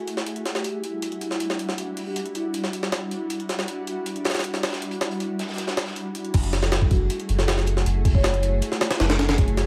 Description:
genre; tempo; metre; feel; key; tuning
drum and bass, jungle; 158 BPM; 4/4; straight; F# phrygian; A4 = 438 Hz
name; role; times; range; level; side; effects
granular cloud pad; sustained chords; 0.0-9.7 s; G3 to G#4; -33 LUFS; equal; built-in reverb
crunchy breakbeat drum kit; drums; 0.1-9.7 s; hi-hat, snare drum; -41 LUFS; equal; high-pass filter on hats, high-pass filter on snare, high-pass filter on room
jungle sampler-style drum kit; drums; 0.1-9.7 s; crash cymbal, hi-hat, kick drum, snare drum; -26 LUFS; equal; high-pass filter on hats, high-pass filter on snare, high-pass filter on cymbals, high-pass filter on kick
vibraphone with soft mallets; melody; 0.6-3.3, 6.6-8.5 s; E4 to C#5; -34 LUFS; equal; dub echo
soft dub sub bass; bass; 6.3-9.7 s; F#1; -25 LUFS; equal; tube saturation
room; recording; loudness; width
light reverb, small room ambience; vinyl crackle; -25 LUFS; mono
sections
0.0-6.3 A section; 6.3-9.7 B section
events
drop 6.3-9.7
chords
0.3 Em9; 6.3 F#m9

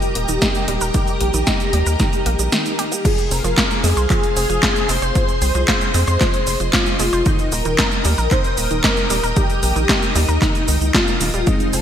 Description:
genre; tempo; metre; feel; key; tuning
italo disco; 114 BPM; 4/4; straight; unclear; A4 = 441 Hz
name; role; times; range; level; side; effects
wide unison lead; melody; 0.0-11.8 s; Eb4 to C5; -22 LUFS; left 1 dB; ensemble chorus, digital delay
string machine, full ensemble; sustained chords; 0.0-11.8 s; G4 to Eb6; -26 LUFS; equal; ensemble chorus
house drum kit; drums; 0.0-11.8 s; cabasa, crash cymbal, handclaps, hi-hat, snare drum; -20 LUFS; equal; studio reverb, gated reverb
analog pluck; arpeggios; 0.2-11.8 s; Eb3 to C5; -27 LUFS; right 4 dB; chorus, ping-pong delay
round analog bass; bass; 0.2-11.8 s; Eb1 to F2; -20 LUFS; equal; none
electronic kick drum; drums; 0.4-11.6 s; none; -20 LUFS; equal; studio reverb
bell-like tine electric piano; stabs; 11.5-11.8 s; Ab3 to Ab4; -24 LUFS; left 3 dB; analog chorus
room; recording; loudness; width
light reverb; bright 1980s-style digital production; -15 LUFS; side -9 dB against mid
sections
0.0-3.0 A section; 3.0-11.8 B section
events
none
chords
0.0 Eb; 3.0 Fm; 7.3 Eb

